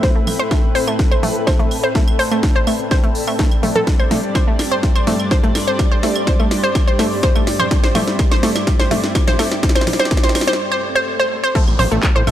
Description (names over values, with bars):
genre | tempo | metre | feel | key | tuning
melodic techno | 125 BPM | 4/4 | straight | unclear | A4 = 442 Hz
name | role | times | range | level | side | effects
lush unison pad | sustained chords | 0.0-12.3 s | G2 to D5 | -25 LUFS | equal | chorus, vintage 12-bit sampler grit, sidechain pumping
wide unison pluck | arpeggios | 0.0-12.3 s | A3 to C6 | -19 LUFS | equal | sidechain pumping, analog delay
electronic kick drum | drums | 0.0-12.1 s | none | -16 LUFS | equal | overdrive, studio reverb
techno drum kit | drums | 0.0-12.3 s | claves, congas, handclaps, hi-hat, snare drum | -22 LUFS | right 1 dB | overdrive, studio reverb
granular cloud pad | texture | 0.0-10.6 s | C4 to D6 | -26 LUFS | left 1 dB | built-in reverb, sidechain pumping
swell and downlifter | sound effects | 10.8-12.3 s | none | -28 LUFS | left 1 dB | none
fat analog bass | bass | 11.7-12.3 s | A1 to A2 | -19 LUFS | equal | sidechain pumping
room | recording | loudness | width
light reverb, digital ambience | dry, gritty hardware recording | -14 LUFS | side -12 dB against mid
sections
0.0-11.6 A section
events
build-up 0.0-11.6; drum fill 0.0-10.6; break 10.6-11.6; swell 10.8-11.6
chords
0.0 Amadd9; 3.9 Gsus4; 11.6 Amadd9